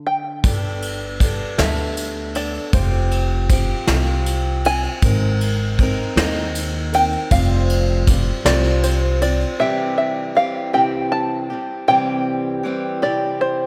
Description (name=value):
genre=indie folk with a building arrangement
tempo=52 BPM (dotted quarters)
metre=6/8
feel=straight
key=C major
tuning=A4 = 440 Hz
part: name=open-back banjo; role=melody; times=0.0-13.7 s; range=C5 to A5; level=-24 LUFS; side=equal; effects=slapback echo
part: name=picked old ladder-braced acoustic guitar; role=accompaniment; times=0.4-13.7 s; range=C3 to C5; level=-26 LUFS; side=equal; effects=slapback echo
part: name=upright bass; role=bass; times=0.4-9.4 s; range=F1 to Eb2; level=-23 LUFS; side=equal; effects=none
part: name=soft brush drum kit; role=drums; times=0.4-9.4 s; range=kick drum, ride cymbal, snare drum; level=-24 LUFS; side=equal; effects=none
part: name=tambourine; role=percussion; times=0.4-9.5 s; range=none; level=-38 LUFS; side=equal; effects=none
room=light reverb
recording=none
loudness=-19 LUFS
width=mono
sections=0.4-9.6 A section; 9.6-13.7 B section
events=stop 0.0-0.4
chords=0.4 Gadd9; 2.7 Fsus2; 5.0 Abadd9; 7.3 Fsus2; 9.6 C